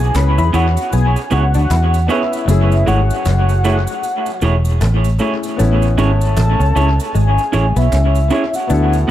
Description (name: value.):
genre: lovers rock reggae.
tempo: 77 BPM.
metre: 4/4.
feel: swing 60% on 16ths.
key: A major.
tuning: A4 = 440 Hz.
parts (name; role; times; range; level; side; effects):
warm velvety synth lead; melody; 0.0-9.1 s; E5 to B5; -20 LUFS; left 2 dB; chorus, tremolo, tape echo.
warm grand piano; accompaniment; 0.0-9.1 s; A3 to B4; -24 LUFS; left 4 dB; tape echo.
vintage muted fingered electric bass; bass; 0.0-9.1 s; E1 to E2; -14 LUFS; equal; none.
cajon; drums; 0.1-9.0 s; none; -31 LUFS; right 1 dB; tape echo.
cabasa; percussion; 0.1-9.1 s; none; -35 LUFS; right 9 dB; none.
electric guitar through a small old amp; riff; 0.2-8.9 s; E3 to E4; -24 LUFS; left 5 dB; tape echo.
electric guitar through a small old amp; stabs; 0.5-9.1 s; A3 to C#5; -21 LUFS; right 3 dB; tape echo.
room: small room ambience.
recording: dark, warm production.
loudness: -12 LUFS.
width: side -12 dB against mid.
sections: 0.0-9.1 A section.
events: none.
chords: 0.0 C#m7; 2.5 F#m9; 5.6 Amaj7.